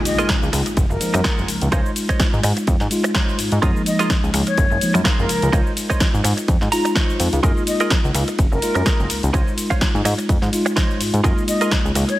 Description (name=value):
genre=filtered disco house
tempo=126 BPM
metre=4/4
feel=swing 55% on 16ths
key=Db major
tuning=A4 = 440 Hz
part: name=mellow tine electric piano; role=accompaniment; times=0.0-12.2 s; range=F3 to F4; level=-23 LUFS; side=left 1 dB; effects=phaser, sidechain pumping
part: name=impact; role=sound effects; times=0.0-1.7 s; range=none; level=-29 LUFS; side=equal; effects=none
part: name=mellow jazz flute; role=melody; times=0.1-12.2 s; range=Bb4 to Eb5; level=-26 LUFS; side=left 2 dB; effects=sidechain pumping, tape echo
part: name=house drum kit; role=drums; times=0.1-12.2 s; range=hi-hat, ride cymbal, shaker, snare drum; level=-24 LUFS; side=left 1 dB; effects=sidechain pumping on hats, sidechain pumping on cymbals, sidechain pumping on perc
part: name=direct-recorded clean electric guitar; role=riff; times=0.2-12.1 s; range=F4 to Bb5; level=-26 LUFS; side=right 4 dB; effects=analog chorus, sidechain pumping
part: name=electronic kick drum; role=drums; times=0.3-11.8 s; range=none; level=-19 LUFS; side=equal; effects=none
part: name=fat analog bass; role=bass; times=0.4-12.0 s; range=Gb1 to Ab2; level=-20 LUFS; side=equal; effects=sidechain pumping
room=light reverb, digital ambience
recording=none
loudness=-16 LUFS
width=side -16 dB against mid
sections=0.0-12.2 A section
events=impact 0.0-1.7; clean electric guitar fill 6.5-7.4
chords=0.0 Gbmaj13; 1.7 Dbmaj9; 3.6 Gbmaj13; 5.5 Dbmaj9; 7.4 Gbmaj13; 9.3 Dbmaj9; 11.2 Gbmaj13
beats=0.29 0.77 1.25 | 1.72 2.20 2.67 3.15 | 3.63 4.10 4.58 5.05 | 5.53 6.01 6.48 6.96 | 7.44 7.91 8.39 8.86 | 9.34 9.82 10.29 10.77 | 11.24 11.72